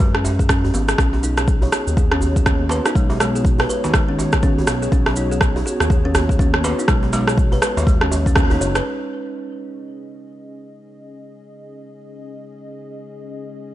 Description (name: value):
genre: afro house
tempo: 122 BPM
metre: 4/4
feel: swing 60% on 16ths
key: unclear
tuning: A4 = 439 Hz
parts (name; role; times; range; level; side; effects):
- kalimba; arpeggios; 0.0-8.8 s; G#3 to C#5; -24 LUFS; equal; sidechain pumping, dub echo
- smooth synth bass; bass; 0.0-8.8 s; F#1 to F#2; -22 LUFS; equal; sidechain pumping
- electronic kick drum; drums; 0.0-8.5 s; none; -17 LUFS; equal; none
- djembe; percussion; 0.0-8.7 s; none; -26 LUFS; right 1 dB; none
- electronic rim click; drums; 0.1-8.8 s; none; -22 LUFS; right 1 dB; none
- cabasa; percussion; 0.3-8.8 s; none; -32 LUFS; right 3 dB; none
- dark analog pad; sustained chords; 1.3-13.7 s; B3 to D#5; -29 LUFS; equal; chorus, vintage 12-bit sampler grit, sidechain pumping
room: small room ambience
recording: nothing above 10.8 kHz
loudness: -15 LUFS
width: side -14 dB against mid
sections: 0.0-8.9 A section; 8.9-13.7 B section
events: band accent 8.4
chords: 0.0 C#5; 1.0 B; 8.9 C#5